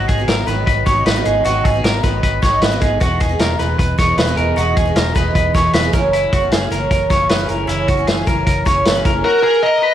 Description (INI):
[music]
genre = jangly indie pop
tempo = 154 BPM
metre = 4/4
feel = straight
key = unclear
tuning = A4 = 441 Hz
[part]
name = picked twelve-string acoustic guitar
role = accompaniment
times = 0.0-9.3 s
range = F#2 to D#4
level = -20 LUFS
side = right 4 dB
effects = none
[part]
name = electric guitar through a small old amp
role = arpeggios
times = 0.0-9.9 s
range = E4 to C#5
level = -19 LUFS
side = left 3 dB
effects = slapback echo
[part]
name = vintage muted fingered electric bass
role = bass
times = 0.0-9.2 s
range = E1 to G#1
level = -21 LUFS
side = equal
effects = none
[part]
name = vintage drum kit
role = drums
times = 0.1-9.1 s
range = hi-hat, kick drum, snare drum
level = -18 LUFS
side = equal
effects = gated reverb
[part]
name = high-gain lead guitar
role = melody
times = 9.2-9.9 s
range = A#4 to D#5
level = -12 LUFS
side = equal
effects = distortion, slapback echo
[sound]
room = light reverb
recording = small room ambience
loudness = -13 LUFS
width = side -11 dB against mid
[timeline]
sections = 0.0-9.2 A section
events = none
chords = 0.0 G#m7; 3.0 Emaj7; 5.9 F#7; 9.2 F#add9